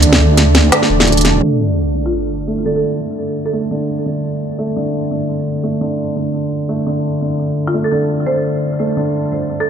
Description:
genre	half-time drum and bass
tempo	171 BPM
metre	4/4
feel	swing 59% on 16ths, half-time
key	unclear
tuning	A4 = 440 Hz
part	deep dark ambient pad	sustained chords	0.0-9.7 s	D4 to D5	-22 LUFS	right 3 dB	chorus, built-in reverb
part	felt-muted upright piano	arpeggios	0.0-9.7 s	D2 to A3	-18 LUFS	equal	low-pass filter, tape echo
part	deep soft wobble bass	bass	0.0-1.4 s	Eb1 to D2	-12 LUFS	equal	chorus
part	organic electronic drum kit	drums	0.0-1.3 s	hi-hat, snare drum	-14 LUFS	equal	studio reverb
part	sub drop	sound effects	1.4-2.8 s	none	-20 LUFS	equal	none
part	buzzing marimba with hard mallets	melody	2.1-3.7, 7.7-9.7 s	F4 to C5	-22 LUFS	right 2 dB	tape echo
room	light reverb, digital ambience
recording	low-pass filter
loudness	-14 LUFS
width	side -8 dB against mid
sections	0.0-1.4 A section; 1.4-9.7 B section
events	drop 0.0-1.4; impact 1.4-2.8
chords	0.0 D5

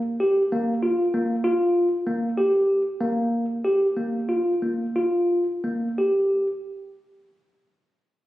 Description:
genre	contemporary instrumental, contemporary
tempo	172-195 BPM (eighths)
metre	11/8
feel	straight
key	G minor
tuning	A4 = 440 Hz
part	tine electric piano	arpeggios	0.2-6.5 s	Bb3 to G4	-21 LUFS	equal	none
room	wet recital hall reverb, RT60 1.4 s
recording	recorded on a phone in the room, studio reverb, compression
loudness	-21 LUFS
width	side -15 dB against mid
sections	0.0-6.7 A section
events	slowing down 1.4-6.7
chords	none

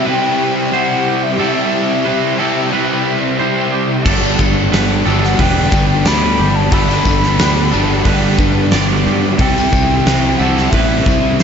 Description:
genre	rock, shoegaze and dream pop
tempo	90 BPM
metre	4/4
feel	straight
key	G major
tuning	A4 = 440 Hz
part	mellow hollow concert flute	melody	0.0-11.4 s	D5 to B5	-20 LUFS	left 2 dB	analog delay
part	string machine, full ensemble	sustained chords	0.0-11.4 s	G4 to B5	-26 LUFS	left 1 dB	ensemble chorus
part	twangy electric guitar	arpeggios	0.0-11.4 s	G4 to D5	-23 LUFS	right 9 dB	lush chorus, analog delay
part	cranked stack guitar	riff	0.0-11.4 s	G2 to G4	-20 LUFS	equal	overdrive
part	crunchy overdriven guitar	riff	0.0-11.4 s	G2 to E4	-20 LUFS	right 11 dB	reverse reverb
part	overdriven electric guitar	riff	0.0-11.4 s	G2 to G4	-20 LUFS	left 12 dB	ensemble chorus
part	fingered electric bass	bass	4.1-11.4 s	E1 to G2	-17 LUFS	equal	none
part	huge arena drum kit	drums	4.1-11.4 s	crash cymbal, hi-hat, kick drum, snare drum	-17 LUFS	equal	none
part	tambourine	percussion	4.2-11.4 s	none	-31 LUFS	left 10 dB	none
room	studio reverb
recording	nothing above 7.8 kHz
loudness	-12 LUFS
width	side -7 dB against mid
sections	0.0-11.4 A section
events	none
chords	0.0 C; 4.1 Gadd9; 9.4 C

